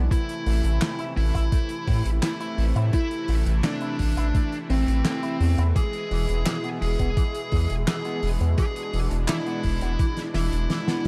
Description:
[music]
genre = synthwave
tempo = 85 BPM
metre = 4/4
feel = straight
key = A harmonic minor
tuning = A4 = 442 Hz
[part]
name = soft supersaw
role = sustained chords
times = 0.0-11.1 s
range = B2 to E4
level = -36 LUFS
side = equal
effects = phaser, sidechain pumping
[part]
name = electric guitar with an envelope filter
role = riff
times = 0.0-11.0 s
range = E3 to E4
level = -39 LUFS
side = equal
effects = subtle chorus, tape echo
[part]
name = round analog bass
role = bass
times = 0.0-11.1 s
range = E1 to A2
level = -25 LUFS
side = equal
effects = sidechain pumping
[part]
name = smooth overdriven lead guitar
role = melody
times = 0.1-11.1 s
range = C4 to G#4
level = -33 LUFS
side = equal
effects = vintage 12-bit sampler grit, tape echo
[part]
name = FM electric piano with soft pad layer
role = second line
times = 0.1-11.1 s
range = C4 to G#4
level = -39 LUFS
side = equal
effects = none
[part]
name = electronic kick drum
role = drums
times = 0.1-10.1 s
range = none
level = -26 LUFS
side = equal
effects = none
[part]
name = loose indie drum kit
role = drums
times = 0.1-11.1 s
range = handclaps, hi-hat, snare drum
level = -33 LUFS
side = equal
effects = none
[sound]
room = digital ambience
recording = dark, warm production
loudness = -24 LUFS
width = mono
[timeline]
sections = 0.0-11.1 A section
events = drum fill 10.3-11.1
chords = 0.1 Am; 5.8 E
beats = | 0.11 0.82 1.52 2.23 | 2.94 3.64 4.35 5.05 | 5.76 6.46 7.17 7.88 | 8.58 9.29 9.99 10.70

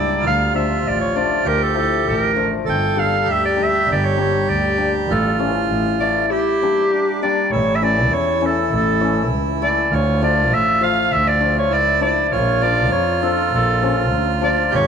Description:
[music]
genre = klezmer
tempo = 100 BPM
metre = 2/4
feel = straight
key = G dorian sharp4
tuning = A4 = 441 Hz
[part]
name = clear clarinet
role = melody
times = 0.0-14.9 s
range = G4 to G5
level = -19 LUFS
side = equal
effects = none
[part]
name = accordion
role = second line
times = 0.0-14.9 s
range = D4 to A4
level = -23 LUFS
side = right 9 dB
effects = none
[part]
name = hammered dulcimer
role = accompaniment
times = 0.0-14.8 s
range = E3 to F4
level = -23 LUFS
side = left 11 dB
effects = none
[part]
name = rich double bass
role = bass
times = 0.2-14.9 s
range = G1 to F2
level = -22 LUFS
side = right 1 dB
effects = none
[sound]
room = moderate echo chamber reverb, RT60 1.9 s, small room ambience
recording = 1960s-style stereo with parts hard left and right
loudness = -15 LUFS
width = side -7 dB against mid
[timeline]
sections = 0.0-7.5 A section; 7.5-14.9 B section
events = none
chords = 0.2 Dm; 2.7 Gm; 5.1 A; 6.3 Gm; 7.5 A; 9.9 Dm; 12.3 Bb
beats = | 0.24 0.84 | 1.45 2.06 | 2.66 3.27 | 3.88 4.48 | 5.08 5.69 | 6.29 6.90 | 7.50 8.10 | 8.71 9.31 | 9.91 10.51 | 11.11 11.71 | 12.31 12.91 | 13.52 14.12 | 14.72

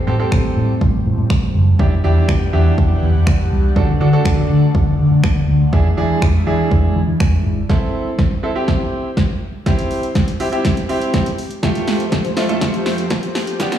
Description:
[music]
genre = dance-pop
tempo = 122 BPM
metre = 4/4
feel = straight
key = A minor from 7.7 s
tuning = A4 = 440 Hz
[part]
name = airy breathy pad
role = sustained chords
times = 0.0-7.7, 11.6-13.8 s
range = F2 to F#5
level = -25 LUFS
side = equal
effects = chorus, phaser, sidechain pumping
[part]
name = clear grand piano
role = accompaniment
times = 0.1-13.8 s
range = A3 to A4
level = -22 LUFS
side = right 2 dB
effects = sidechain pumping
[part]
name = vintage muted fingered electric bass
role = bass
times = 0.1-7.6 s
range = E1 to E3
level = -15 LUFS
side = equal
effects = sidechain pumping
[part]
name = punchy analog drum machine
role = drums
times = 0.3-13.8 s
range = finger snaps, hi-hat, kick drum, shaker, snare drum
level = -18 LUFS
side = equal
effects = overdrive
[sound]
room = light reverb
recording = played on a big sound system in a bare room, stone room reverb, high-pass filter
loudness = -14 LUFS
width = side -10 dB against mid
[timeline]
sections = 0.0-7.7 A section; 7.7-13.8 B section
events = build-up 7.7-13.8; drum fill 7.7-13.8; filter sweep 7.7-13.8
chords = 0.0 Am7; 1.8 Em7; 3.8 D; 5.7 E7; 7.7 Am; 9.7 C; 11.6 Fadd9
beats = 0.32 0.81 1.30 | 1.79 2.29 2.78 3.27 | 3.76 4.25 4.75 5.24 | 5.73 6.22 6.71 7.20 | 7.70 8.19 8.68 9.17 | 9.66 10.15 10.65 11.14 | 11.63 12.12 12.61 13.11 | 13.60

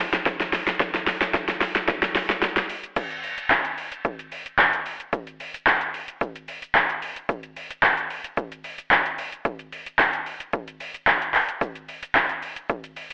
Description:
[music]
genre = pop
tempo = 111 BPM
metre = 4/4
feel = straight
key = none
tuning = none
[part]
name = deep house drum kit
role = drums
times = 0.1-13.1 s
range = crash cymbal, handclaps, hi-hat, kick drum, shaker, snare drum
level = -21 LUFS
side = equal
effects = overdrive
[sound]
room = wet digital room reverb, RT60 1.0 s, digital ambience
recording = telephone sound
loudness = -21 LUFS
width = side -38 dB against mid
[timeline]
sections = 0.0-3.0 A section; 3.0-13.1 B section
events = build-up 0.0-3.0; drum fill 0.0-3.0; drop 3.0-13.1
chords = none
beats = 0.26 | 0.80 1.34 1.88 2.42 | 2.96 3.51 4.05 4.59 | 5.13 5.67 6.21 6.75 | 7.29 7.83 8.37 8.91 | 9.45 9.99 10.53 11.07 | 11.61 12.15 12.70

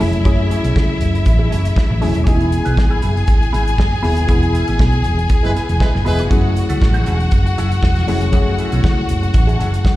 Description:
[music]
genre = disco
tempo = 119 BPM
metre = 4/4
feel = straight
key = F# minor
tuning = A4 = 443 Hz
[part]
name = clear studio string section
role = second line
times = 0.0-10.0 s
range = E4 to G#5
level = -23 LUFS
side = left 2 dB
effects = slapback echo
[part]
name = mellow electric guitar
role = accompaniment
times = 0.0-9.8 s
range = A3 to B4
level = -28 LUFS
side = right 5 dB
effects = wah, slapback echo
[part]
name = mellow tine electric piano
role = accompaniment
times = 0.0-10.0 s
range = F#3 to F#5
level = -22 LUFS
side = left 3 dB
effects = analog chorus, slapback echo
[part]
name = hollow-body short-scale fingered electric bass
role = bass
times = 0.0-9.8 s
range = D#1 to C#2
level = -17 LUFS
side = equal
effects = none
[part]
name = warm soul drum kit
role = drums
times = 0.0-10.0 s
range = hi-hat, kick drum, snare drum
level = -17 LUFS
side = equal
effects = none
[part]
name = warm horn section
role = stabs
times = 5.4-6.2 s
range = G#3 to B4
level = -25 LUFS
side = right 2 dB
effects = slapback echo
[sound]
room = small room ambience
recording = live gig heard through the venue's PA, recital hall reverb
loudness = -13 LUFS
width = side -16 dB against mid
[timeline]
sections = 0.0-10.0 A section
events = band accent 4.3-6.3; tine electric piano fill 9.6-10.0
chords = 0.0 F#m9; 2.3 E; 6.3 F#m9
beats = | 0.25 0.76 1.26 1.77 | 2.27 2.77 3.28 3.78 | 4.29 4.79 5.30 5.80 | 6.31 6.81 7.32 7.82 | 8.33 8.83 9.34 9.84

